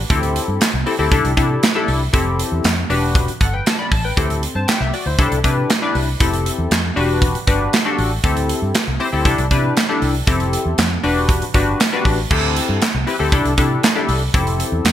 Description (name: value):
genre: early-eighties boogie funk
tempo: 118 BPM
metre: 4/4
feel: straight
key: unclear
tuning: A4 = 438 Hz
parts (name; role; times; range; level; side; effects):
- vintage muted fingered electric bass; bass; 0.0-14.9 s; E1 to C3; -20 LUFS; equal; none
- funky polysynth comp; accompaniment; 0.1-14.9 s; C4 to B5; -20 LUFS; left 3 dB; chorus
- modern studio drum kit; drums; 0.1-14.9 s; crash cymbal, handclaps, hi-hat, kick drum, snare drum; -18 LUFS; right 1 dB; gated reverb
room: light reverb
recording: bright 1980s-style digital production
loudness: -15 LUFS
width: side -11 dB against mid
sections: 0.0-12.3 A section; 12.3-14.9 A section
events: none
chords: 0.1 C69; 2.1 Fmaj9; 2.9 Em9; 4.2 D9sus4; 5.2 C69; 6.2 Fmaj9; 7.0 Em9; 8.2 D9sus4; 9.3 C69; 10.3 Fmaj9; 11.0 Em9; 12.3 D9sus4; 13.3 C69; 14.3 Fmaj9